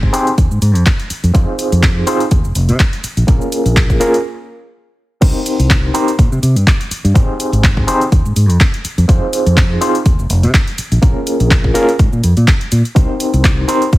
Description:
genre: filtered disco house.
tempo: 124 BPM.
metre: 4/4.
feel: swing 55% on 16ths.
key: F minor.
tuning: A4 = 440 Hz.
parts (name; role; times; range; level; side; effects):
overdriven reed electric piano; accompaniment; 0.0-13.9 s; Bb3 to C5; -16 LUFS; equal; fast tremolo, phaser, sidechain pumping, low-pass filter.
fingered electric bass; bass; 0.0-14.0 s; F1 to C3; -13 LUFS; equal; sidechain pumping, low-pass filter.
electronic kick drum; drums; 0.0-14.0 s; none; -12 LUFS; equal; studio reverb.
punchy analog drum machine; drums; 0.1-14.0 s; crash cymbal, handclaps, hi-hat, shaker; -20 LUFS; equal; overdrive, sidechain pumping on hats, studio reverb, sidechain pumping on perc, sidechain pumping on cymbals.
room: digital ambience.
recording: heavily compressed radio sound.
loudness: -11 LUFS.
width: side -17 dB against mid.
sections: 0.0-5.2 A section; 5.2-14.0 B section.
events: filter sweep 0.0-5.2; break 4.2-5.2; drop 5.2-14.0.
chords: 0.0 Abmaj7; 1.1 Fm7; 3.0 Bbm7; 5.2 Cm7; 7.2 Abmaj7; 8.8 Fm7; 10.8 Bbm7; 13.0 Cm7.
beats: 0.38 0.86 | 1.35 1.83 2.31 2.80 | 3.28 3.77 4.25 4.73 | 5.22 5.70 6.18 6.67 | 7.15 7.64 8.12 8.60 | 9.09 9.57 10.06 10.54 | 11.02 11.51 11.99 12.47 | 12.96 13.44 13.93.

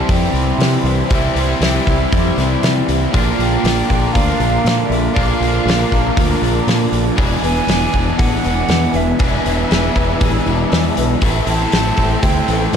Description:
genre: rock, shoegaze and dream pop.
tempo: 119 BPM.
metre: 4/4.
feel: straight.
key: unclear.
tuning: A4 = 439 Hz.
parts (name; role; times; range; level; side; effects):
mellow hollow concert flute; melody; 0.0-12.8 s; E5 to A5; -24 LUFS; right 5 dB; tape echo.
warm analog pad; sustained chords; 0.0-12.8 s; G4 to E6; -28 LUFS; right 2 dB; chorus.
picked twelve-string acoustic guitar; arpeggios; 0.0-12.8 s; E3 to Bb4; -27 LUFS; left 12 dB; ensemble chorus, tape echo.
biting overdriven guitar; riff; 0.0-12.8 s; A2 to G#4; -21 LUFS; right 14 dB; reverse reverb.
overdriven electric guitar; riff; 0.0-12.8 s; E2 to F4; -20 LUFS; left 12 dB; lush chorus.
growling fingered electric bass; bass; 0.1-12.8 s; E1 to C3; -19 LUFS; equal; overdrive.
loose indie drum kit; drums; 0.1-12.8 s; hi-hat, kick drum, snare drum; -19 LUFS; equal; none.
room: small room ambience.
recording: dark, warm production.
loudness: -13 LUFS.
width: side -7 dB against mid.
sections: 0.0-12.8 A section.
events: none.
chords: 0.0 C; 3.1 Bb; 7.2 E7; 11.2 Am7.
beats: 0.09 0.59 | 1.10 1.61 2.12 2.62 | 3.13 3.64 4.14 4.65 | 5.16 5.66 6.17 6.67 | 7.18 7.68 8.19 8.69 | 9.20 9.70 10.21 10.71 | 11.22 11.73 12.23 12.74.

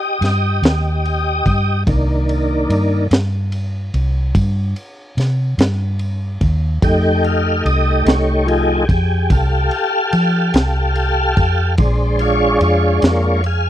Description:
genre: slow blues.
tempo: 48 BPM (dotted quarters).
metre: 12/8.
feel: straight.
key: unclear.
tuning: A4 = 439 Hz.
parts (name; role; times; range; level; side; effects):
tonewheel organ; sustained chords; 0.0-13.7 s; Eb3 to G5; -17 LUFS; left 1 dB; chorus vibrato, slow rotary speaker.
vintage muted fingered electric bass; bass; 0.2-13.7 s; Bb1 to F3; -17 LUFS; equal; none.
crunchy breakbeat drum kit; drums; 0.2-13.6 s; kick drum, ride cymbal, snare drum; -17 LUFS; equal; none.
room: small room ambience.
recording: dry, close 1970s-style studio recording.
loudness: -14 LUFS.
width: side -12 dB against mid.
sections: 0.0-13.7 A section.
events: tonewheel organ solo 0.0-13.7.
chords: 0.0 G(#5, no3); 1.9 Cm7; 6.8 F7; 11.8 Bb7.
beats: 0.62 | 1.86 3.10 4.34 5.58 | 6.83 8.06 9.30 10.55 | 11.79 13.03.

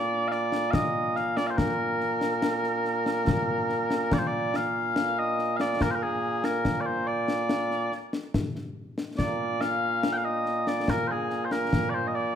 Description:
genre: scottish traditional, Scottish pipe music.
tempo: 71 BPM.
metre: 3/4.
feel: straight.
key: Bb mixolydian.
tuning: A4 = 440 Hz.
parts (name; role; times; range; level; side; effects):
mellow small bagpipes; melody; 0.0-12.4 s; Bb2 to G5; -26 LUFS; equal; none.
concert snare drum and concert bass drum; drums; 0.3-11.9 s; none; -30 LUFS; left 2 dB; none.
room: moderate recital hall reverb, RT60 1.3 s.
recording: none.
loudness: -25 LUFS.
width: side -8 dB against mid.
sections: 0.0-4.1 A section; 4.1-12.4 B section.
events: none.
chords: none.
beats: 0.74 | 1.58 2.43 3.27 | 4.12 4.96 5.81 | 6.66 7.50 8.35 | 9.19 10.04 10.88 | 11.73.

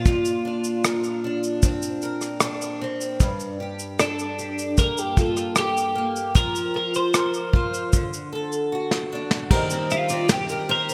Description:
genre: acoustic pop.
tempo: 76 BPM.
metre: 4/4.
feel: straight.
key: G minor.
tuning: A4 = 440 Hz.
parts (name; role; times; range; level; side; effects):
twelve-string electric guitar; melody; 0.0-10.9 s; D4 to C5; -27 LUFS; equal; analog chorus.
picked steel-string acoustic guitar; accompaniment; 0.0-10.9 s; G2 to Bb4; -29 LUFS; equal; double-tracked.
soft brush drum kit; drums; 0.1-10.9 s; crash cymbal, kick drum, rim click, shaker, snare drum; -25 LUFS; equal; none.
felt-muted upright piano; accompaniment; 9.5-10.9 s; G3 to C5; -35 LUFS; equal; none.
picked steel-string acoustic guitar; arpeggios; 9.5-10.9 s; Bb4 to D5; -33 LUFS; equal; delay.
room: wet plate reverb, RT60 2.7 s.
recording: bright 1980s-style digital production.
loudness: -24 LUFS.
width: mono.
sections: 0.0-9.5 A section; 9.5-10.9 B section.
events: drum fill 8.7-9.5.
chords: 0.0 Bbadd9; 3.2 Gmadd9; 6.4 Fsus4; 7.9 D; 9.5 Eb6.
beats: | 0.06 0.84 1.63 2.42 | 3.21 3.99 4.78 5.57 | 6.36 7.14 7.93 8.72 | 9.51 10.30.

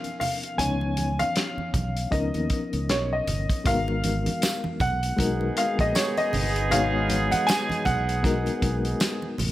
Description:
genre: lush 1970s-style soul.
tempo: 78 BPM.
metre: 4/4.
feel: swing 58% on 16ths.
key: G# dorian.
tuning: A4 = 440 Hz.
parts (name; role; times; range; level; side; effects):
warm baby grand piano; melody; 0.0-9.0 s; C#5 to G#5; -28 LUFS; equal; none.
reed electric piano; accompaniment; 0.0-9.5 s; E#3 to C#5; -30 LUFS; left 3 dB; fast tremolo.
warm soul drum kit; drums; 0.0-9.5 s; hi-hat, kick drum, snare drum; -28 LUFS; equal; none.
congas; percussion; 0.0-9.5 s; none; -34 LUFS; right 3 dB; none.
fingered electric bass; bass; 0.6-9.5 s; G1 to D#2; -28 LUFS; equal; none.
tambourine; percussion; 4.4-9.2 s; none; -34 LUFS; right 4 dB; none.
clear horn section; stabs; 5.2-9.3 s; G#3 to G#4; -29 LUFS; right 2 dB; none.
room: studio ambience.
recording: none.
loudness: -22 LUFS.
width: side -14 dB against mid.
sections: 0.0-3.7 A section; 3.7-9.5 B section.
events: none.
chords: 0.0 C#13; 3.7 G#m9.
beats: | 0.59 1.36 2.12 2.89 | 3.65 4.42 5.18 5.95 | 6.71 7.48 8.24 9.01.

